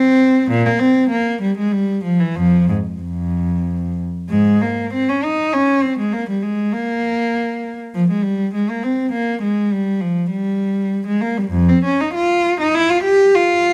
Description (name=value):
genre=classical, baroque-style suite movement for unaccompanied cello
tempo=99 BPM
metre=3/4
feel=rubato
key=F minor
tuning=A4 = 440 Hz
part: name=warm cello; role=solo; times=0.0-13.7 s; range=F2 to G4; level=-17 LUFS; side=equal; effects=none
room=moderate stone room reverb, RT60 1.2 s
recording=close, detailed microphones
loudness=-18 LUFS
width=mono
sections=0.0-4.3 A section; 4.3-13.7 A section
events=none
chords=none